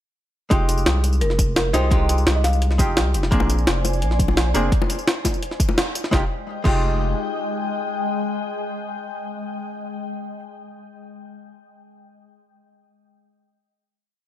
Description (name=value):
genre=liquid drum and bass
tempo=171 BPM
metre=4/4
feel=straight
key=F dorian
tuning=A4 = 442 Hz
part: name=archtop guitar, miked and amplified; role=accompaniment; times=0.5-10.4 s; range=Ab3 to Ab4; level=-26 LUFS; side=equal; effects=ping-pong delay
part: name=saturated sub bass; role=bass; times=0.5-7.1 s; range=F1 to C2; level=-21 LUFS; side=equal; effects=none
part: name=electronic kick drum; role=drums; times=0.5-6.8 s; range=none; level=-21 LUFS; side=equal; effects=studio reverb
part: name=jungle sampler-style drum kit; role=drums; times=0.5-6.8 s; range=crash cymbal, hi-hat, snare drum, tambourine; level=-23 LUFS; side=equal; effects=studio reverb
part: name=buzzing marimba with medium mallets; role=melody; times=1.2-2.9 s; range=Bb4 to F5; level=-28 LUFS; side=equal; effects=ping-pong delay
part: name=glassy FM pad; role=sustained chords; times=3.6-9.7 s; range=Ab3 to Ab5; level=-28 LUFS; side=left 2 dB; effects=ensemble chorus, built-in reverb
part: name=bongos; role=percussion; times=3.4-5.8 s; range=none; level=-29 LUFS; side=left 6 dB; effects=none
room=light reverb, digital ambience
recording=none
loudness=-19 LUFS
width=side -12 dB against mid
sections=0.5-6.1 drop; 6.1-8.9 final chord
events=drop 0.5-6.1; band accent 5.8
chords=0.5 Fm9; 3.3 Bb9; 4.7 N.C.; 6.1 Fm9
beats=| 0.51 0.86 1.21 1.56 | 1.92 2.27 2.62 2.97 | 3.32 3.67 4.02 4.37 | 4.72 5.07 5.42 5.78 | 6.12 6.48 6.83 7.18 | 7.53 7.88 8.23 8.58